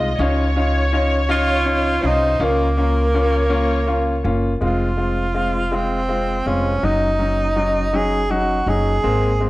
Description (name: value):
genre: six-eight pop ballad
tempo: 54 BPM (dotted quarters)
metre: 6/8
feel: straight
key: unclear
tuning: A4 = 440 Hz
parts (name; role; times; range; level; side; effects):
- dark studio violin section; second line; 0.0-4.3 s; Bb4 to Eb5; -25 LUFS; equal; none
- clear grand piano; accompaniment; 0.0-9.5 s; Gb3 to F4; -22 LUFS; left 2 dB; none
- upright bass; bass; 0.0-9.5 s; F1 to Db2; -21 LUFS; equal; none
- bright tenor saxophone; melody; 1.3-9.5 s; Bb3 to Ab4; -21 LUFS; right 1 dB; none
room: moderate recital hall reverb, RT60 1.5 s, studio reverb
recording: worn, warbling old tape, cassette tape, warbly pitch drift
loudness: -16 LUFS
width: side -18 dB against mid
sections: 0.0-4.6 A section; 4.6-9.5 B section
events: none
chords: 0.2 Dbadd9; 2.4 Bbm/Db; 4.6 Fm; 6.8 Ebm7/Gb